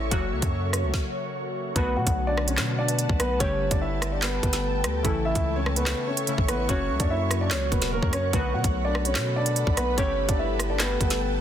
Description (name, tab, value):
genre	hip hop, drill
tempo	146 BPM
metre	4/4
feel	half-time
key	B minor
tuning	A4 = 439 Hz
part	glassy digital keys	accompaniment	0.0-11.4 s	C#3 to G4	-32 LUFS	left 3 dB	chorus
part	ethereal airy pad	sustained chords	0.0-11.4 s	A4 to C#6	-32 LUFS	equal	ensemble chorus, built-in reverb
part	long sustained 808-style bass	bass	0.0-11.4 s	E1 to B2	-28 LUFS	equal	none
part	drill drum kit	drums	0.1-11.2 s	handclaps, hi-hat, kick drum, rim click, snare drum	-27 LUFS	equal	soft clipping on snare
part	dark grand piano	melody	1.8-11.4 s	A3 to F#5	-28 LUFS	equal	ping-pong delay
room	light reverb, digital ambience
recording	dense, heavily limited modern master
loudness	-22 LUFS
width	side -10 dB against mid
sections	0.0-1.8 A section; 1.8-11.4 B section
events	break 0.0-1.8; stop 0.9-1.8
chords	0.1 F#; 1.8 Bm7; 3.4 Gsus2; 5.0 A; 6.7 F#; 8.3 Bm7; 10.0 Gsus2